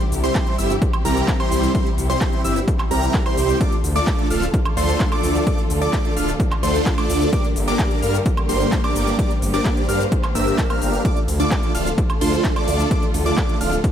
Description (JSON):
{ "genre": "EDM, festival progressive house", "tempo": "129 BPM", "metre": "4/4", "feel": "straight", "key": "D minor", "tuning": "A4 = 440 Hz", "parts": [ { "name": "warm studio string section", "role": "sustained chords", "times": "0.0-13.9 s", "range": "C3 to C5", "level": "-28 LUFS", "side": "left 1 dB", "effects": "sidechain pumping" }, { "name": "plucky unison lead", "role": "arpeggios", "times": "0.0-13.8 s", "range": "Bb5 to F6", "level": "-28 LUFS", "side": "equal", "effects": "sidechain pumping, ping-pong delay" }, { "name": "big supersaw lead", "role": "riff", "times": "0.0-13.8 s", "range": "G3 to F5", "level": "-22 LUFS", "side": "right 1 dB", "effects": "phaser, sidechain pumping, ping-pong delay" }, { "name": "big-room dance drum kit", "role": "drums", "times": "0.0-13.9 s", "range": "handclaps, hi-hat, ride cymbal, shaker, woodblock", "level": "-29 LUFS", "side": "right 1 dB", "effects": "overdrive" }, { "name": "wide detuned saw bass", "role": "bass", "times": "0.1-13.8 s", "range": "D1 to G2", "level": "-23 LUFS", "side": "equal", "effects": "chorus, sidechain pumping" }, { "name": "electronic kick drum", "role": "drums", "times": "0.4-13.9 s", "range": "none", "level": "-21 LUFS", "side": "equal", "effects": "overdrive" } ], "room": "light reverb", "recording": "none", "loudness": "-17 LUFS", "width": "side -9 dB against mid", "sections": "0.0-13.9 A section", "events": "none", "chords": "0.0 C; 3.6 Dm; 7.3 Gm; 11.1 Dm" }